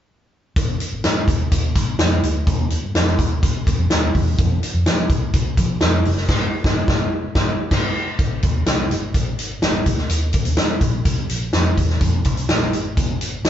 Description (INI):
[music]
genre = uptempo 1960s-style soul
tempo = 126 BPM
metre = 4/4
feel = straight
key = Ab major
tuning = A4 = 440 Hz
[part]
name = vintage muted fingered electric bass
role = bass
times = 0.6-13.5 s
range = Gb1 to F3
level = -22 LUFS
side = equal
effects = none
[part]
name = swinging big-band drum kit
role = drums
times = 0.6-13.5 s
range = crash cymbal, hi-hat, kick drum, snare drum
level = -18 LUFS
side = equal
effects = none
[sound]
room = light reverb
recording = band playing live in one room, nothing above 7.6 kHz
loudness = -17 LUFS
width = side -10 dB against mid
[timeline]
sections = 0.6-8.2 A section; 8.2-13.5 B section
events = band accent 6.3-8.2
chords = none